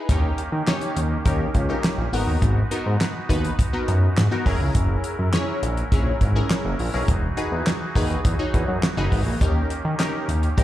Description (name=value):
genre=early-eighties boogie funk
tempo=103 BPM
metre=4/4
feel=straight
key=unclear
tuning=A4 = 440 Hz
part: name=funky polysynth comp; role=accompaniment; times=0.0-10.6 s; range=B3 to C#5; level=-28 LUFS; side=left 2 dB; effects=chorus, slapback echo
part: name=pipe organ, soft reed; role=sustained chords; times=0.1-10.6 s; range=D#3 to A#4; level=-32 LUFS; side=right 1 dB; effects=none
part: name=fat analog bass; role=bass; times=0.1-10.6 s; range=E1 to D#3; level=-22 LUFS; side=equal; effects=none
part: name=damped 70s drum kit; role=drums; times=0.1-10.6 s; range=handclaps, hi-hat, kick drum, snare drum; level=-23 LUFS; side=equal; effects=none
room=light reverb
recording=live gig heard through the venue's PA, club reverb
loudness=-20 LUFS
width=side -14 dB against mid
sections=0.1-10.6 A section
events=none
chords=0.1 D#7; 2.1 G#m7; 4.5 F#7; 7.1 Emaj9; 9.4 D#7